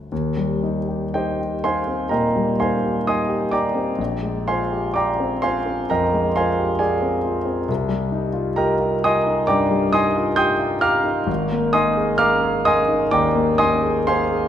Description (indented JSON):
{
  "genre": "classical, impressionist solo piano",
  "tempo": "58-68 BPM",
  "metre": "4/4",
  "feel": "rubato",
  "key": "Eb major",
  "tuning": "A4 = 440 Hz",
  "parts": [
    { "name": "warm concert grand piano", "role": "solo", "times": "0.0-14.5 s", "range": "Ab1 to G6", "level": "-18 LUFS", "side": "equal", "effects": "none" }
  ],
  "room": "wet recital hall reverb, RT60 1.7 s",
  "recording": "none",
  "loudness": "-18 LUFS",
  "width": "side -10 dB against mid",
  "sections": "0.1-14.5 A section",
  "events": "none",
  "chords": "0.1 Eb6; 4.0 Bb13; 7.7 Cm11; 11.3 Abadd9"
}